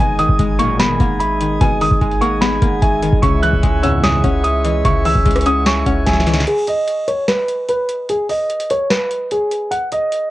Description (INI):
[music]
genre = hip hop, trap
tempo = 148 BPM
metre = 4/4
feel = half-time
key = unclear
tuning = A4 = 439 Hz
[part]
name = dark grand piano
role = melody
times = 0.0-10.3 s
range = G#4 to F#6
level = -18 LUFS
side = right 1 dB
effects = low-pass filter, cassette tape
[part]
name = warm velvety synth lead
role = second line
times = 0.0-6.5 s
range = D#5 to G#5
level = -28 LUFS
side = right 7 dB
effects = chorus, analog delay
[part]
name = string-like resonator pluck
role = accompaniment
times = 0.0-6.5 s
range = B2 to C#5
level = -22 LUFS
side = left 6 dB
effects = chorus, low-pass filter
[part]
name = pipe organ, plenum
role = sustained chords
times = 0.0-6.4 s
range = G#3 to C#5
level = -22 LUFS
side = left 1 dB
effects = none
[part]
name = long sustained 808-style bass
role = bass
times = 0.0-6.5 s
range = F#1 to C#2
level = -20 LUFS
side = equal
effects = none
[part]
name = booming analog drum machine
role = drums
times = 0.2-10.2 s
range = crash cymbal, hi-hat, kick drum, rim click, snare drum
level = -18 LUFS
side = equal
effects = overdrive, cassette tape
[part]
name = analog synth brass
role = stabs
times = 0.6-1.0, 3.8-4.2 s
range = G#1 to D#3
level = -24 LUFS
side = right 1 dB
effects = chorus, analog delay
[sound]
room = digital ambience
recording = home recording on cassette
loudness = -14 LUFS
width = side -16 dB against mid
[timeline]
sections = 0.0-6.5 A section; 6.5-10.3 B section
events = drum fill 6.1-6.5; break 6.5-10.3; filter sweep 6.5-10.3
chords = 0.0 G#madd9; 3.2 C#m; 6.5 N.C.